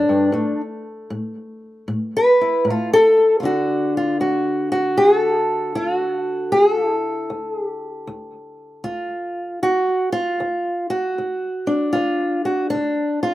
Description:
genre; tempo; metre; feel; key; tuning
acoustic country blues, solo or duo; 77 BPM; 4/4; swing 67% on 8ths; D major; A4 = 440 Hz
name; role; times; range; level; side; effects
fingerpicked old ladder-braced acoustic guitar; solo; 0.0-13.3 s; D2 to B4; -18 LUFS; equal; slapback echo
room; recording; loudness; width
little or no reverb; recorded outdoors, with no room sound; -17 LUFS; side -15 dB against mid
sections
0.0-3.4 A section; 3.4-13.3 B section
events
steel-string acoustic guitar solo 0.0-3.4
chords
0.3 A5; 3.4 D

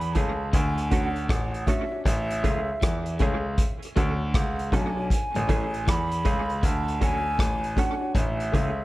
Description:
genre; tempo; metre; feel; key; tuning
roots reggae; 79 BPM; 4/4; swing 63% on 16ths; A major; A4 = 440 Hz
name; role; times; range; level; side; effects
mellow hollow concert flute; melody; 0.0-8.8 s; E5 to B5; -31 LUFS; right 2 dB; tape echo
clear concert grand piano; bass; 0.0-8.8 s; A1 to E2; -28 LUFS; equal; none
vintage drum kit; drums; 0.0-8.8 s; hi-hat, kick drum, rim click; -26 LUFS; equal; none
clean electric guitar; riff; 0.1-8.7 s; A2 to E3; -34 LUFS; left 3 dB; lush chorus
semi-hollow electric guitar; accompaniment; 0.2-8.7 s; E3 to A4; -34 LUFS; right 4 dB; tremolo, tape echo
warm upright piano; stabs; 0.2-8.8 s; D4 to C#5; -36 LUFS; left 4 dB; none
room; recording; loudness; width
light reverb, small room ambience; none; -23 LUFS; side -18 dB against mid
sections
0.0-8.8 A section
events
none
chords
0.0 Amaj7; 0.5 Dmaj7; 2.1 Amaj7; 3.6 Dmaj7; 5.1 Amaj7; 6.6 Dmaj7; 8.2 Amaj7

